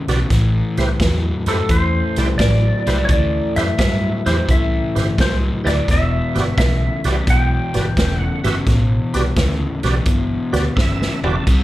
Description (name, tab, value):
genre	electric blues shuffle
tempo	86 BPM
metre	4/4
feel	swing 67% on 8ths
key	E minor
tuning	A4 = 440 Hz
part	crunchy overdriven guitar	riff	0.0-11.6 s	E2 to G3	-22 LUFS	left 2 dB	slapback echo
part	tonewheel organ	accompaniment	0.1-11.4 s	E4 to A5	-24 LUFS	right 4 dB	slow rotary speaker, overdrive, chorus vibrato, plate reverb, slapback echo
part	vintage muted fingered electric bass	bass	0.1-11.6 s	E1 to G2	-19 LUFS	equal	none
part	vintage drum kit	drums	0.1-11.6 s	hi-hat, kick drum, snare drum, splash cymbal, toms	-20 LUFS	equal	none
part	clean lap steel guitar	melody	1.5-8.6 s	A4 to G5	-23 LUFS	equal	plate reverb, slapback echo
room	light reverb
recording	live gig heard through the venue's PA, club reverb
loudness	-15 LUFS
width	side -16 dB against mid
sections	0.0-11.6 A section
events	tonewheel organ fill 10.4-11.5; drum fill 10.8-11.5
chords	0.3 Am7; 5.9 Em7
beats	| 0.31 1.00 1.70 2.39 | 3.09 3.79 4.48 5.18 | 5.88 6.57 7.27 7.97 | 8.67 9.37 10.07 10.77 | 11.46